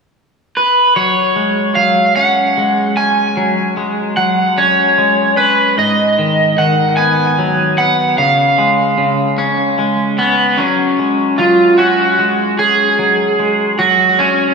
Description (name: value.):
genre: rock.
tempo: 50 BPM (dotted quarters).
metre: 6/8.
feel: straight.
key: unclear.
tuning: A4 = 441 Hz.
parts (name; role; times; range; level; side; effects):
crunchy overdriven guitar; melody; 0.6-14.5 s; B3 to G#5; -12 LUFS; right 2 dB; slapback echo, digital delay.
twangy electric guitar; arpeggios; 1.0-14.5 s; G#2 to C#4; -16 LUFS; left 1 dB; slapback echo, digital delay.
room: wet lush hall reverb, RT60 2.3 s.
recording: big arena sound, studio reverb.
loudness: -11 LUFS.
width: side -4 dB against mid.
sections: 1.0-10.6 A section; 10.6-14.5 A section.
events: none.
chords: 0.0 N.C.; 1.0 F#sus2; 5.8 G#m7; 8.2 C#; 10.6 F#sus2.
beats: | 0.97 2.17 | 3.38 4.58 | 5.78 6.99 | 8.19 9.39 | 10.59 11.79 | 12.99 14.20.